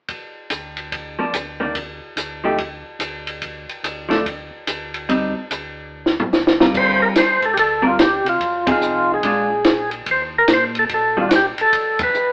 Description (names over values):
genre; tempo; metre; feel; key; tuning
soul jazz organ trio; 144 BPM; 4/4; swing 64% on 8ths; G minor; A4 = 440 Hz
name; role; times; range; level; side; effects
compact cocktail drum kit; drums; 0.1-12.3 s; crash cymbal, hi-hat, kick drum, ride cymbal, snare drum, toms; -21 LUFS; equal; none
mellow tonewheel organ; bass; 0.5-12.3 s; G1 to C3; -36 LUFS; equal; slow rotary speaker
vintage hollow-body jazz guitar; accompaniment; 1.2-11.3 s; Eb3 to Bb4; -19 LUFS; equal; none
percussive tonewheel organ; melody; 6.8-12.3 s; F4 to C5; -16 LUFS; equal; slow rotary speaker
room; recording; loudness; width
wet studio reverb, RT60 0.6 s; band playing live in one room, AM radio sound; -16 LUFS; side -30 dB against mid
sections
0.1-6.7 A section; 6.7-12.3 B section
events
drum fill 5.9-6.7; band accent 8.6, 11.9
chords
0.1 N.C.; 1.8 Dmadd11; 2.6 N.C.; 5.1 Cmadd9/D; 5.9 Dmadd11; 6.7 Gm7; 8.4 Fm7; 9.2 Bb7; 10.1 Eb5; 11.7 G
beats
| 0.09 0.51 0.92 1.34 | 1.76 2.17 2.59 3.00 | 3.42 3.84 4.25 4.67 | 5.08 5.50 5.92 6.33 | 6.75 7.16 7.58 7.99 | 8.40 8.82 9.23 9.65 | 10.06 10.48 10.89 11.30 | 11.72 12.13